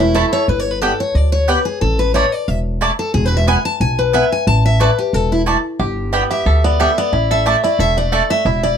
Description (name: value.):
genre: bluegrass.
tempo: 181 BPM.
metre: 4/4.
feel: swing 53% on 8ths.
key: A mixolydian.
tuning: A4 = 440 Hz.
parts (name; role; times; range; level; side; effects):
bluegrass banjo; melody; 0.0-0.5, 5.8-8.8 s; A3 to A4; -20 LUFS; right 4 dB; none.
picked steel-string acoustic guitar; accompaniment; 0.0-8.8 s; E4 to A5; -18 LUFS; left 3 dB; none.
upright bass; bass; 0.0-8.8 s; E1 to D2; -17 LUFS; equal; none.
mandolin; stabs; 0.1-8.2 s; A3 to A5; -17 LUFS; right 3 dB; none.
room: little or no reverb.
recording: close, detailed microphones.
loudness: -13 LUFS.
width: side -8 dB against mid.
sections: 0.5-8.8 A section.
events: steel-string acoustic guitar solo 0.0-8.8.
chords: 0.5 G; 1.8 Asus4; 3.1 E; 4.5 Asus4; 5.8 G; 7.1 Asus4.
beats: 0.16 | 0.49 0.82 1.15 1.49 | 1.82 2.15 2.48 2.81 | 3.15 3.48 3.81 4.14 | 4.47 4.80 5.14 5.47 | 5.80 6.13 6.46 6.80 | 7.13 7.46 7.79 8.12 | 8.46.